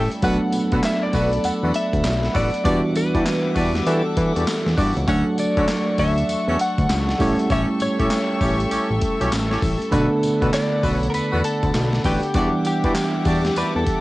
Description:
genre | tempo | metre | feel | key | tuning
R&B, new jack swing | 99 BPM | 4/4 | swing 63% on 16ths | B minor | A4 = 440 Hz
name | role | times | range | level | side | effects
direct-recorded clean electric guitar | melody | 0.0-14.0 s | G4 to F#5 | -25 LUFS | left 1 dB | analog chorus, cassette tape
bell-like tine electric piano | accompaniment | 0.0-14.0 s | D3 to F#5 | -23 LUFS | right 2 dB | cassette tape
warm studio string section | sustained chords | 0.0-14.0 s | G3 to D6 | -29 LUFS | left 2 dB | cassette tape
warm horn section | stabs | 0.0-13.7 s | B3 to D5 | -26 LUFS | left 1 dB | cassette tape
fat analog bass | bass | 0.0-13.8 s | A1 to E3 | -23 LUFS | equal | transformer saturation
boom bap sampler-style drum kit | drums | 0.1-14.0 s | handclaps, hi-hat, kick drum, snare drum, tambourine | -26 LUFS | equal | vintage 12-bit sampler grit, cassette tape
room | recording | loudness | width
light reverb | home recording on cassette | -18 LUFS | side -18 dB against mid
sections
0.0-14.0 A section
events
none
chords
0.2 Bm7; 2.7 Em9; 5.1 Dmaj7; 7.2 A7; 9.9 Bm7; 12.3 Em9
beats
| 0.23 0.83 1.44 2.05 | 2.65 3.26 3.87 4.47 | 5.08 5.68 6.29 6.89 | 7.50 8.11 8.71 9.32 | 9.93 10.53 11.14 11.74 | 12.35 12.96 13.56

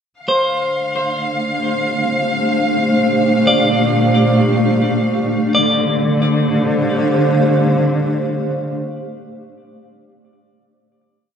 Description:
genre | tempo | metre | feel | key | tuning
ambient | free time | none | none | D minor | A4 = 444 Hz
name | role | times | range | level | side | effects
granular cloud pad | sustained chords | 1.1-9.0 s | A3 to F5 | -16 LUFS | equal | built-in reverb
dark chamber cello section | bass | 0.2-8.7 s | Bb2 to D3 | -20 LUFS | left 1 dB | none
muted chamber violin section | texture | 0.2-5.6 s | F5 | -22 LUFS | left 1 dB | none
clean electric guitar | arpeggios | 0.3-8.7 s | C5 to D5 | -20 LUFS | equal | analog delay
room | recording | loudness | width
wet spring reverb, RT60 2.1 s | echo-heavy mix | -14 LUFS | side -7 dB against mid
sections
0.2-5.5 A section; 5.5-8.2 final chord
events
fade-in on cello section 0.2-5.5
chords
0.2 Dm; 2.9 Bbmaj7; 5.5 Dm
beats
free time

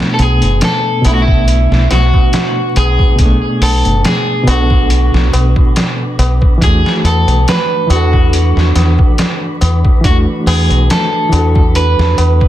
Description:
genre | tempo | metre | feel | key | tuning
trip hop | 70 BPM | 4/4 | swing 54% on 16ths | B dorian | A4 = 440 Hz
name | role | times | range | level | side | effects
barky reed electric piano | accompaniment | 0.0-12.5 s | B2 to A4 | -18 LUFS | equal | overdrive, fast tremolo, low-pass filter, tape echo
trip hop sampler-style drum kit | drums | 0.0-12.5 s | hi-hat, kick drum, snare drum | -14 LUFS | equal | none
wind-like tuned noise texture | texture | 1.0-12.5 s | D4 to B4 | -27 LUFS | right 3 dB | built-in reverb
electric guitar at the edge of break-up | melody | 0.1-12.5 s | E4 to B4 | -17 LUFS | equal | tape echo
deep dub fingered electric bass | bass | 0.2-12.4 s | F#1 to E2 | -11 LUFS | equal | none
tabla | percussion | 0.2-12.5 s | none | -26 LUFS | left 3 dB | none
room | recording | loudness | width
digital ambience | dense, heavily limited modern master, vinyl crackle | -9 LUFS | side -13 dB against mid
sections
0.0-12.5 A section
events
filter sweep on reed electric piano 0.0-12.5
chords
0.0 Bm7; 6.6 E9sus4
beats
0.62 1.47 2.33 | 3.19 4.04 4.90 5.76 | 6.62 7.47 8.33 9.19 | 10.04 10.90 11.76

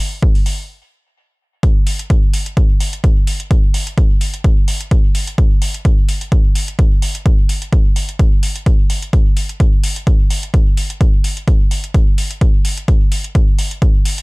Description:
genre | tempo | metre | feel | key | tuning
techno | 128 BPM | 4/4 | swing 54% on 16ths | none | none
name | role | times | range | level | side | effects
electronic kick drum | drums | 0.2-13.9 s | none | -12 LUFS | equal | none
electronic hi-hat | drums | 0.4-14.2 s | none | -25 LUFS | left 1 dB | overdrive
room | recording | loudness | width
little or no reverb | none | -12 LUFS | side -29 dB against mid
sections
0.0-1.6 A section; 1.6-14.2 A section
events
stop 0.7-1.6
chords
none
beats
0.23 0.69 1.16 | 1.63 2.10 2.57 3.04 | 3.51 3.98 4.44 4.91 | 5.38 5.85 6.32 6.79 | 7.26 7.72 8.19 8.66 | 9.13 9.60 10.07 10.54 | 11.01 11.47 11.94 12.41 | 12.88 13.35 13.82

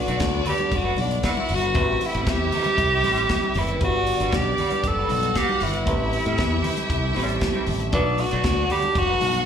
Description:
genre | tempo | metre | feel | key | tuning
disco | 116 BPM | 4/4 | straight | A dorian | A4 = 436 Hz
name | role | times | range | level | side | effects
breathy tenor saxophone | melody | 0.0-9.5 s | D4 to A4 | -23 LUFS | right 1 dB | slapback echo
clear symphonic string section | second line | 0.0-9.5 s | D4 to F#5 | -29 LUFS | left 1 dB | slapback echo
dark baby grand piano | accompaniment | 0.0-9.5 s | G3 to D5 | -34 LUFS | left 4 dB | slapback echo
warm French horn section | sustained chords | 0.0-9.5 s | D3 to B4 | -34 LUFS | right 3 dB | none
clean electric guitar | accompaniment | 0.1-9.4 s | G3 to C5 | -32 LUFS | right 4 dB | wah, tremolo, slapback echo
modern bright fingered electric bass | bass | 0.1-9.4 s | F#1 to A2 | -26 LUFS | equal | none
modern studio drum kit | drums | 0.1-9.5 s | hi-hat, kick drum, snare drum | -28 LUFS | equal | none
congas | percussion | 0.2-9.3 s | none | -33 LUFS | left 4 dB | slapback echo
room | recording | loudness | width
light reverb | live gig heard through the venue's PA, club reverb | -20 LUFS | side -8 dB against mid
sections
0.0-9.5 A section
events
none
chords
0.0 Bm7; 1.8 Am9; 3.8 Gmaj7; 5.9 Am9; 7.9 Bm7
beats
0.20 0.72 1.24 | 1.75 2.27 2.78 3.30 | 3.81 4.33 4.84 5.36 | 5.88 6.39 6.90 7.42 | 7.93 8.45 8.96

